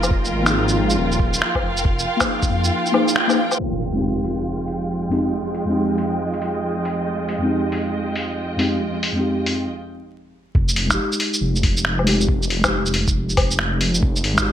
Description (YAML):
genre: future garage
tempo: 138 BPM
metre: 4/4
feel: swing 64% on 16ths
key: F minor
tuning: A4 = 440 Hz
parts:
  - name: muted felt-like synth keys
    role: accompaniment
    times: 0.0-14.5 s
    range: F2 to Ab4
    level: -23 LUFS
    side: left 1 dB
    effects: chorus, vintage 12-bit sampler grit, sidechain pumping, low-pass filter, digital delay
  - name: dark studio string section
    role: sustained chords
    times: 0.0-9.7 s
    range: F3 to G5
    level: -24 LUFS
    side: right 2 dB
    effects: vintage 12-bit sampler grit, sidechain pumping
  - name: swelling detuned saw bass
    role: bass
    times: 0.0-2.7, 10.5-14.5 s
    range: Eb1 to F2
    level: -22 LUFS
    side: equal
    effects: sidechain pumping
  - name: lo-fi sampler-style drum kit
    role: drums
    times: 0.0-14.4 s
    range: finger snaps, hi-hat, shaker, woodblock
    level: -21 LUFS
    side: equal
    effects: none
  - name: electronic kick drum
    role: drums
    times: 0.1-2.5, 10.6-14.4 s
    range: none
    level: -21 LUFS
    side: equal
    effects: none
  - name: impact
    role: sound effects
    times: 3.6-5.3 s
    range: none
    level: -28 LUFS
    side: right 1 dB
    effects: none
room: moderate plate reverb, RT60 1.2 s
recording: bright 1980s-style digital production, vinyl crackle, low-pass filter, faint mains hum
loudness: -18 LUFS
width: side -10 dB against mid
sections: 0.0-3.6 A section; 3.6-10.5 B section; 10.5-14.5 C section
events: band accent 3.2; impact 3.6-5.3; filter sweep on synth keys 3.6-10.5; filter sweep 3.6-10.5; break 9.7-10.5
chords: 0.0 Fm9